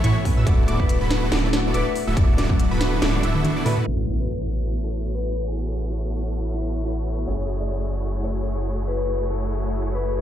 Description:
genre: future bass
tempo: 141 BPM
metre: 4/4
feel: swing 56% on 16ths, half-time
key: A major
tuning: A4 = 439 Hz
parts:
  - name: mellow electric guitar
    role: melody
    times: 0.0-10.2 s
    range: D3 to D5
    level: -30 LUFS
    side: left 2 dB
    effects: sidechain pumping, tape echo
  - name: warm concert grand piano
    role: accompaniment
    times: 0.0-10.2 s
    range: F#3 to B4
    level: -33 LUFS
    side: equal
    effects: sidechain pumping, dub echo
  - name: wide unison pluck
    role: arpeggios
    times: 0.0-3.8 s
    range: B5 to E6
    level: -34 LUFS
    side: right 1 dB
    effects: sidechain pumping
  - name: supersaw chords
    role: riff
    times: 0.0-10.2 s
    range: A3 to E5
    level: -29 LUFS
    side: equal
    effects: sidechain pumping, low-pass filter
  - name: saturated sub bass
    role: bass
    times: 0.0-10.2 s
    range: D1 to A2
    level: -24 LUFS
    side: equal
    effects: sidechain pumping
  - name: trap drum kit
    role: drums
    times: 0.0-10.1 s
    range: crash cymbal, hi-hat, snare drum, toms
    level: -25 LUFS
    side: equal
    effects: none
  - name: electronic kick drum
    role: drums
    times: 0.3-2.6 s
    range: none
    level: -19 LUFS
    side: equal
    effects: none
  - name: impact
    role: sound effects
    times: 3.9-5.6 s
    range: none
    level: -31 LUFS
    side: equal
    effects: none
room: little or no reverb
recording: played on a big sound system in a bare room, large studio reverb, low-pass filter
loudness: -20 LUFS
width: side -11 dB against mid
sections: 0.0-3.9 A section; 3.9-10.2 B section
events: drop 0.0-3.9; drum fill 3.0-3.9; impact 3.9-5.6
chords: 0.5 D69; 3.9 A69; 7.3 F#m9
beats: 0.04 | 0.47 0.89 1.32 1.74 | 2.17 2.59 3.02 3.44 | 3.87 4.29 4.72 5.15 | 5.57 6.00 6.42 6.85 | 7.27 7.70 8.12 8.55 | 8.98 9.40 9.83

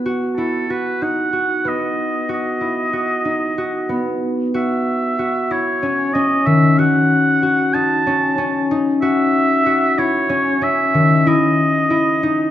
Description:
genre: contemporary instrumental, contemporary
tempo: 187 BPM (eighths)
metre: 7/8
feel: straight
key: unclear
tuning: A4 = 440 Hz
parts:
  - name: concert harp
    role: arpeggios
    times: 0.0-12.5 s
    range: D#3 to F#4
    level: -17 LUFS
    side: left 2 dB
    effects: none
  - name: clear oboe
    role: melody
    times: 0.4-12.5 s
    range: A4 to A5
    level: -18 LUFS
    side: right 2 dB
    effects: none
room: moderate recital hall reverb, RT60 1.6 s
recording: dark, warm production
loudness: -15 LUFS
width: side -11 dB against mid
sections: 0.0-4.5 A section; 4.5-12.5 B section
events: none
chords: 0.1 B; 4.5 F#5; 6.8 F#m6; 9.0 F#5; 11.3 C#madd9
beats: | 0.05 0.37 0.69 1.01 1.34 1.66 1.98 | 2.30 2.62 2.94 3.26 3.58 3.90 4.22 | 4.54 4.86 5.18 5.50 5.82 6.14 6.46 | 6.79 7.11 7.42 7.75 8.07 8.39 8.71 | 9.03 9.35 9.67 9.99 10.31 10.63 10.95 | 11.27 11.59 11.91 12.23

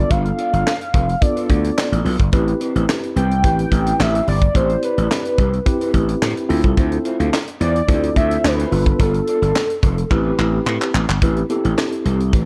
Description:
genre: early-eighties boogie funk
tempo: 108 BPM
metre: 4/4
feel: straight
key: A minor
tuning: A4 = 440 Hz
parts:
  - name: warm velvety synth lead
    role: melody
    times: 0.0-10.1 s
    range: A4 to G5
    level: -24 LUFS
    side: equal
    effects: chorus, tremolo, tape echo
  - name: mellow tine electric piano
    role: accompaniment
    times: 0.0-12.4 s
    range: B3 to D5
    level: -25 LUFS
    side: equal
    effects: none
  - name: gritty slap bass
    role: bass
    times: 0.0-12.5 s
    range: F1 to A2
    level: -21 LUFS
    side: equal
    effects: overdrive
  - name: electric guitar at the edge of break-up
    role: riff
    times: 0.1-12.5 s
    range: C4 to F5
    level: -34 LUFS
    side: equal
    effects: analog chorus
  - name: tight funk drum kit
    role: drums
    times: 0.1-12.5 s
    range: handclaps, hi-hat, kick drum, snare drum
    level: -21 LUFS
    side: equal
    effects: none
room: light reverb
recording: dark, warm production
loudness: -18 LUFS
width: mono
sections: 0.0-11.2 A section; 11.2-12.5 B section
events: drum fill 10.1-11.2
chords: 0.0 G9; 2.3 Am9; 6.5 Dm9; 8.7 G9; 10.1 Am9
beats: | 0.11 0.66 1.22 1.77 | 2.33 2.89 3.44 4.00 | 4.55 5.11 5.66 6.22 | 6.78 7.33 7.89 8.44 | 9.00 9.55 10.11 10.66 | 11.22 11.78 12.33

